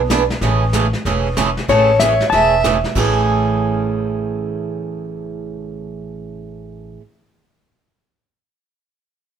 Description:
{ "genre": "country, western swing", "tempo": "189 BPM", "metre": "4/4", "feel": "swing 64% on 8ths", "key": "A major", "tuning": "A4 = 439 Hz", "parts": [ { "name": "upright bass", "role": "bass", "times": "0.0-7.0 s", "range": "E1 to B1", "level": "-22 LUFS", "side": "left 1 dB", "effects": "none" }, { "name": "picked swing-style acoustic guitar", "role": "accompaniment", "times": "0.1-7.0 s", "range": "A2 to G#4", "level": "-20 LUFS", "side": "right 7 dB", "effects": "none" }, { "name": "vintage brush drum kit", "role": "drums", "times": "0.1-3.2 s", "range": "brushed snare drum, crash cymbal, hi-hat, kick drum, snare drum", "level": "-24 LUFS", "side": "left 1 dB", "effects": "none" }, { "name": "clean lap steel guitar", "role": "melody", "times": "1.7-2.6 s", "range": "C#5 to A5", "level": "-14 LUFS", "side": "left 5 dB", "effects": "none" }, { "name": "clear fiddle", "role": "second line", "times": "1.7-2.6 s", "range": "A4 to E5", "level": "-18 LUFS", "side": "right 5 dB", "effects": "none" } ], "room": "moderate club reverb, RT60 0.7 s", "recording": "none", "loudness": "-14 LUFS", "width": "side -8 dB against mid", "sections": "0.0-1.7 A section; 1.7-3.0 B section; 3.0-5.5 C section", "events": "none", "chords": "0.4 Amaj7" }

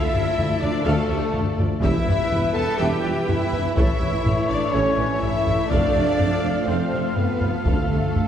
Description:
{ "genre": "cinematic, epic orchestral film score", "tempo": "124 BPM", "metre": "4/4", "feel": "straight", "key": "unclear", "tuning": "A4 = 441 Hz", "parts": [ { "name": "warm symphonic violin section", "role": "melody", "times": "0.0-8.3 s", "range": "A4 to A5", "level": "-35 LUFS", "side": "left 3 dB", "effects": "none" }, { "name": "silver concert flute", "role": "second line", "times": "0.0-8.3 s", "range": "A4 to A5", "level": "-30 LUFS", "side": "equal", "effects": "none" }, { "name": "warm symphonic violin section", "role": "second line", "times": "0.0-8.3 s", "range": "A4 to A5", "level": "-32 LUFS", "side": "left 4 dB", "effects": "none" }, { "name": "warm studio viola section", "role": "accompaniment", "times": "0.0-8.2 s", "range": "E4 to F5", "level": "-31 LUFS", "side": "right 1 dB", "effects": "none" }, { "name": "dark trombone section", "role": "sustained chords", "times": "0.0-8.3 s", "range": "E3 to A3", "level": "-31 LUFS", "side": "right 2 dB", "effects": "none" }, { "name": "mellow French horn section", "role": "sustained chords", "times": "0.0-8.3 s", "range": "A3 to A4", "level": "-27 LUFS", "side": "left 2 dB", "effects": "none" }, { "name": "warm symphonic string section", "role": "sustained chords", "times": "0.0-8.3 s", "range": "F3 to F5", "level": "-32 LUFS", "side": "equal", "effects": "none" }, { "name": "mellow trumpet", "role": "stabs", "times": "0.0-8.3 s", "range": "A4 to F5", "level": "-32 LUFS", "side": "left 1 dB", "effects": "none" }, { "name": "rich symphonic cello section", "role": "bass", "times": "0.0-8.3 s", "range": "A3 to A4", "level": "-31 LUFS", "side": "right 2 dB", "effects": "none" }, { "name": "dark tuba", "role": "bass", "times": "0.1-8.3 s", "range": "E1 to D2", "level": "-28 LUFS", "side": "equal", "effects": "none" }, { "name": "rich symphonic double bass section", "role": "bass", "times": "0.1-8.2 s", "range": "A1 to F2", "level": "-29 LUFS", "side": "right 2 dB", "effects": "none" }, { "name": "taiko ensemble", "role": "drums", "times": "0.1-8.3 s", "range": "none", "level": "-24 LUFS", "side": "equal", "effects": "none" }, { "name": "timpani", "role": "percussion", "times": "7.7-8.3 s", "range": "D3", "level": "-28 LUFS", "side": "left 3 dB", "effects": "none" } ], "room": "wet scoring stage reverb, RT60 2.0 s", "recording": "heard from further back in the room", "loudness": "-19 LUFS", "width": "side -9 dB against mid", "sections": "0.0-8.3 A section", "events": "timpani fill 7.7-8.3", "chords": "0.0 Dm; 1.8 Em; 3.8 A; 5.7 F; 7.7 Dm" }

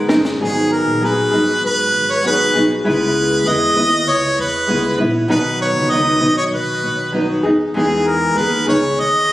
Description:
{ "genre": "pop", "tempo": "98 BPM", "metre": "4/4", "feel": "straight", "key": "G# minor", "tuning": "A4 = 439 Hz", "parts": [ { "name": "nylon-string guitar", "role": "accompaniment", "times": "0.0-9.3 s", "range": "G#2 to B4", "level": "-17 LUFS", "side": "equal", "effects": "none" }, { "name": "upright bass", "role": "bass", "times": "0.0-9.3 s", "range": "F#1 to B2", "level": "-27 LUFS", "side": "equal", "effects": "none" }, { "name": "clear harmonica", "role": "melody", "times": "0.4-9.3 s", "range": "G#4 to D#5", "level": "-17 LUFS", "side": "equal", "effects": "ping-pong delay" } ], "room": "light reverb, small room ambience", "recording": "recorded on a phone in the room, studio reverb", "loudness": "-14 LUFS", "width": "side -15 dB against mid", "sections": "0.4-9.3 A section", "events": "none", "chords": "0.4 G#m7; 2.9 C#m7; 5.3 B; 7.4 Emaj7" }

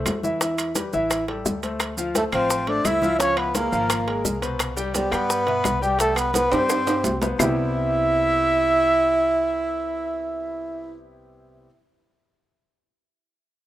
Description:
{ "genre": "Afro-Cuban jazz", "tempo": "172 BPM", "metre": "4/4", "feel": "straight", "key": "C major", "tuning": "A4 = 438 Hz", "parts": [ { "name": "clear concert grand piano", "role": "accompaniment", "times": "0.0-11.7 s", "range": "B2 to G5", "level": "-27 LUFS", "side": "left 2 dB", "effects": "none" }, { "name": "upright bass", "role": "bass", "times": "0.0-11.7 s", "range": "Ab1 to G2", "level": "-32 LUFS", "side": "equal", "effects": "none" }, { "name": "bongos", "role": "percussion", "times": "0.1-7.5 s", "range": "none", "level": "-30 LUFS", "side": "left 4 dB", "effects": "none" }, { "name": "claves", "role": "percussion", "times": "0.1-7.5 s", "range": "none", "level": "-31 LUFS", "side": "left 4 dB", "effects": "none" }, { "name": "congas", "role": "percussion", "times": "0.1-7.5 s", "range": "none", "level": "-32 LUFS", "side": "left 1 dB", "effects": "none" }, { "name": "maracas", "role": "percussion", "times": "0.1-7.5 s", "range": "none", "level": "-31 LUFS", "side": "right 5 dB", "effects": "none" }, { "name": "timbales", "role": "percussion", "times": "0.1-7.5 s", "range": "none", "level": "-29 LUFS", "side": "right 4 dB", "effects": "none" }, { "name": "breathy trumpet", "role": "melody", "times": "2.2-11.0 s", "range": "G4 to E5", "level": "-23 LUFS", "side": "left 1 dB", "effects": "none" }, { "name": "mellow tenor saxophone", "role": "second line", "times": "2.2-11.0 s", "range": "G3 to E4", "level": "-26 LUFS", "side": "right 4 dB", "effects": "none" } ], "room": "light reverb, small room reverb", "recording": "rough home demo mix", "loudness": "-20 LUFS", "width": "side -13 dB against mid", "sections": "0.0-7.4 A section; 7.4-10.2 B section", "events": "drum fill 6.5-7.4", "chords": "0.4 Em; 1.1 A5; 1.8 Dm9; 3.2 Db6; 4.6 Cmaj7(no3); 7.4 Cmaj7" }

